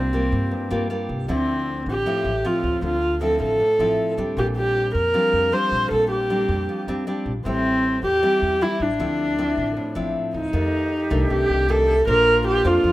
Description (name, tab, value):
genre	bossa nova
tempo	156 BPM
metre	4/4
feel	straight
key	D minor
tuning	A4 = 440 Hz
part	dark viola	melody	0.0-12.9 s	C4 to C5	-20 LUFS	equal	none
part	nylon-string guitar	accompaniment	0.0-12.9 s	F2 to C5	-26 LUFS	left 1 dB	none
part	upright bass	bass	0.0-12.9 s	A1 to G2	-26 LUFS	equal	none
part	hollow concert flute	second line	10.5-12.9 s	F4 to G4	-29 LUFS	right 3 dB	none
room	light reverb, small room ambience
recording	rough home demo mix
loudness	-19 LUFS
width	side -16 dB against mid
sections	0.0-10.5 A section; 10.5-12.9 B section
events	none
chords	0.0 C7sus4; 1.3 Dm9; 4.4 Bb69; 7.5 Am7; 9.0 Dm9; 10.5 F13; 12.1 Bbmaj9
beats	0.13 0.52 0.90 | 1.29 1.67 2.06 2.44 | 2.83 3.21 3.60 3.98 | 4.37 4.75 5.14 5.52 | 5.91 6.29 6.68 7.07 | 7.45 7.83 8.22 8.61 | 8.99 9.38 9.76 10.15 | 10.53 10.92 11.30 11.69 | 12.07 12.46 12.84